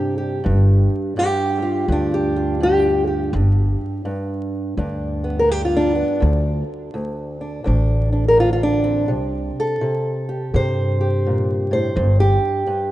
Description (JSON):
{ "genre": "acoustic country blues, solo or duo", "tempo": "83 BPM", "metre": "4/4", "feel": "swing 64% on 8ths", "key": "unclear", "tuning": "A4 = 439 Hz", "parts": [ { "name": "fingerpicked old ladder-braced acoustic guitar", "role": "melody", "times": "0.0-12.9 s", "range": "D2 to C5", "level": "-19 LUFS", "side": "equal", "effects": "none" }, { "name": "upright bass", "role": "bass", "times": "0.0-12.4 s", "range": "G1 to G2", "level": "-19 LUFS", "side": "equal", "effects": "none" } ], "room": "light reverb, small room ambience", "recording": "rough home demo mix, vinyl crackle, nothing above 10.3 kHz", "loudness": "-17 LUFS", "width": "side -15 dB against mid", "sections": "0.0-12.9 A section", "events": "none", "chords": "0.5 G7(no3); 6.2 D5; 9.1 C5; 12.0 G5" }